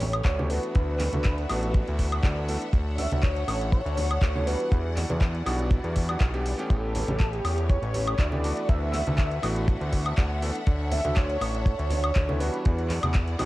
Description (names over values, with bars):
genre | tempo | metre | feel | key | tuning
nu-disco, nu disco | 121 BPM | 4/4 | straight | unclear | A4 = 443 Hz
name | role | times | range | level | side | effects
wide unison lead | melody | 0.0-12.9 s | A4 to E5 | -32 LUFS | right 1 dB | analog chorus, cassette tape, tape echo
clear studio string section | sustained chords | 0.0-13.5 s | A3 to F#5 | -37 LUFS | left 2 dB | sidechain pumping, cassette tape
fat analog bass | bass | 0.0-13.5 s | A1 to E2 | -28 LUFS | equal | transformer saturation
pop drum kit | drums | 0.0-13.5 s | handclaps, hi-hat, woodblock | -34 LUFS | left 1 dB | overdrive, cassette tape
congas | percussion | 0.0-13.5 s | none | -34 LUFS | right 1 dB | none
kick drum | drums | 0.2-13.3 s | none | -23 LUFS | equal | cassette tape
bright electric grand piano | accompaniment | 0.4-13.5 s | D3 to A4 | -34 LUFS | right 1 dB | sidechain pumping, low-pass filter, cassette tape
room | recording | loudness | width
little or no reverb | home recording on cassette | -23 LUFS | side -18 dB against mid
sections
0.0-13.5 A section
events
none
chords
0.0 A9; 0.5 D69; 2.7 Bm11; 4.7 Em9; 6.7 A9; 8.4 D69; 10.7 Bm11; 12.7 Em9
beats
0.26 | 0.75 1.25 1.74 2.24 | 2.74 3.23 3.73 4.22 | 4.72 5.21 5.71 6.21 | 6.70 7.20 7.69 8.19 | 8.69 9.18 9.68 10.17 | 10.67 11.16 11.66 12.16 | 12.65 13.15